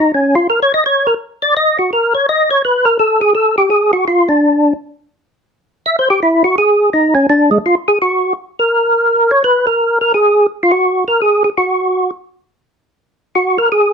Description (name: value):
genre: jazz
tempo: 168 BPM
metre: 4/4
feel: swing 63% on 8ths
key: unclear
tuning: A4 = 439 Hz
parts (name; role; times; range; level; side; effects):
- percussive tonewheel organ; solo; 0.0-13.9 s; Ab3 to Fb5; -10 LUFS; equal; slow rotary speaker, chorus vibrato
room: light reverb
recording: none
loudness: -11 LUFS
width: side -6 dB against mid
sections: 0.0-8.0 A section; 8.0-13.9 B section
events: tonewheel organ solo 0.0-8.0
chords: none